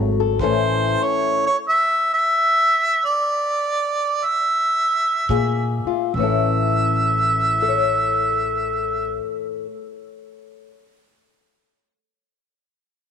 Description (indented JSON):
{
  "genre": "acoustic country blues, solo or duo",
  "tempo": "68-95 BPM",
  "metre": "4/4",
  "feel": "swing 66% on 8ths",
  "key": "A major",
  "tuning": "A4 = 440 Hz",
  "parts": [
    { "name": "fingerpicked old ladder-braced acoustic guitar", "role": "accompaniment", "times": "0.0-10.8 s", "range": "A2 to C#5", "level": "-23 LUFS", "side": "left 13 dB", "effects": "none" },
    { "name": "upright bass", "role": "bass", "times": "0.0-0.9, 5.3-9.2 s", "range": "G#1 to Bb2", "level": "-24 LUFS", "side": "right 2 dB", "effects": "none" },
    { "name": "mellow harmonica", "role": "melody", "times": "0.4-9.2 s", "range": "C5 to E5", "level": "-18 LUFS", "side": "right 2 dB", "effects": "none" },
    { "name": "kick drum", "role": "drums", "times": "0.4-0.6, 5.3-5.5 s", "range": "none", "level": "-30 LUFS", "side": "right 4 dB", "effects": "none" }
  ],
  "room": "light reverb",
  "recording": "1960s-style stereo",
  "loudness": "-17 LUFS",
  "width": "side -7 dB against mid",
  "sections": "0.0-6.1 A section; 6.1-9.7 B section",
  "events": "slowing down 0.4-6.1",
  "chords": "0.4 A; 5.3 Bb5; 6.1 A",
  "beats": "| 0.40 1.04 1.69 2.35 | 3.04 3.75 4.50 5.29 | 6.14 7.03 7.91 8.79"
}